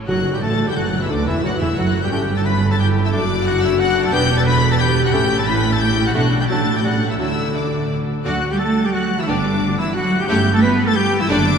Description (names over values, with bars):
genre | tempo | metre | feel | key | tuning
classical, dramatic, fast romantic movement for symphony orchestra | 177 BPM | 3/4 | straight | D major | A4 = 441 Hz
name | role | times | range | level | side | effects
warm studio violin section | melody | 0.1-11.6 s | D6 to B6 | -25 LUFS | left 4 dB | none
concert flute | second line | 0.1-11.6 s | D5 to B5 | -29 LUFS | left 2 dB | none
warm clarinet | second line | 0.1-11.6 s | C#4 to B4 | -28 LUFS | left 1 dB | none
warm oboe | second line | 0.1-11.6 s | D4 to B4 | -28 LUFS | equal | none
warm symphonic violin section | second line | 0.1-11.5 s | F#4 to B5 | -29 LUFS | left 4 dB | none
mellow bassoon | accompaniment | 0.1-7.3 s | D3 to B3 | -29 LUFS | equal | none
warm symphonic viola section | accompaniment | 0.1-11.5 s | D3 to B4 | -27 LUFS | equal | none
dark French horn section | sustained chords | 0.1-11.4 s | A3 to B4 | -25 LUFS | left 6 dB | none
rich symphonic cello section | bass | 0.1-11.6 s | D2 to B3 | -22 LUFS | right 2 dB | none
warm symphonic double bass section | bass | 0.1-11.6 s | E1 to D2 | -21 LUFS | right 3 dB | none
tam-tam | percussion | 0.1-1.4 s | none | -32 LUFS | left 3 dB | none
mellow trumpet | stabs | 8.3-11.6 s | D4 to B4 | -26 LUFS | right 1 dB | none
room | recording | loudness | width
wet cathedral reverb, RT60 4.8 s | minimal, uncompressed stereo recording | -15 LUFS | side -6 dB against mid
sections
0.1-8.3 A section; 8.3-11.6 A section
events
band accent 0.1-0.4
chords
0.1 F#m7; 1.1 G; 2.1 A7/G; 3.1 D/F#; 4.1 Em7; 5.1 A7; 6.2 Bm7; 6.5 D/A; 6.8 A7; 7.2 D; 9.3 G; 10.3 A7(no3)/G